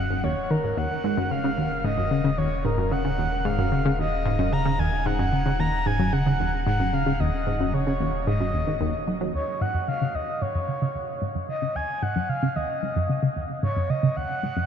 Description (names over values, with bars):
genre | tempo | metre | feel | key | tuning
ambient, sequencer-driven space music | 112 BPM | 4/4 | straight | Eb minor | A4 = 440 Hz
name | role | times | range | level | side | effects
breathy flute-like synth lead | melody | 0.0-14.7 s | Bb4 to Bb5 | -28 LUFS | equal | chorus, tape echo
tight sequenced synth | riff | 0.0-14.7 s | Eb2 to Gb3 | -25 LUFS | equal | chorus, tape echo
warm sub bass | bass | 0.0-9.3 s | Eb1 | -31 LUFS | equal | none
room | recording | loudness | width
moderate huge ambient reverb, RT60 8.7 s | none | -22 LUFS | side -8 dB against mid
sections
0.0-9.3 A section; 9.3-14.7 B section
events
none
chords
0.0 Ebm7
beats
0.24 | 0.77 1.31 1.84 2.38 | 2.92 3.45 3.99 4.52 | 5.06 5.59 6.13 6.67 | 7.20 7.74 8.27 8.81 | 9.34 9.88 10.41 10.95 | 11.49 12.02 12.56 13.09 | 13.63 14.16